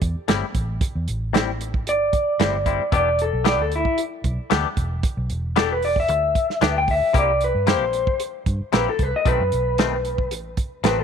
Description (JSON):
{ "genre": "straight-eighth soul blues", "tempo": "114 BPM", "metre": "4/4", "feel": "straight", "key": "E minor", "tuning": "A4 = 440 Hz", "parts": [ { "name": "vintage muted fingered electric bass", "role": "bass", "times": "0.0-11.0 s", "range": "E1 to G2", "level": "-26 LUFS", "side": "equal", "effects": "none" }, { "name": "warm soul drum kit", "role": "drums", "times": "0.0-11.0 s", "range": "hi-hat, kick drum, snare drum", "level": "-23 LUFS", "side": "right 4 dB", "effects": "none" }, { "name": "direct-recorded clean electric guitar", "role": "stabs", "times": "0.3-11.0 s", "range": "A2 to G4", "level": "-25 LUFS", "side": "left 12 dB", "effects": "lush chorus" }, { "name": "electric guitar through a small old amp", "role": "melody", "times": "1.9-11.0 s", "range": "E4 to G5", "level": "-21 LUFS", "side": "left 1 dB", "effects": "none" } ], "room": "light reverb", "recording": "1960s-style stereo", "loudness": "-19 LUFS", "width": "side -7 dB against mid", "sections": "0.0-11.0 A section", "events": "none", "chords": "0.0 Am7; 2.9 Em7; 7.1 C7; 9.3 B7b9", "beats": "0.28 | 0.81 1.33 1.86 2.39 | 2.92 3.45 3.98 4.50 | 5.03 5.56 6.09 6.62 | 7.15 7.67 8.20 8.73 | 9.26 9.79 10.31 10.84" }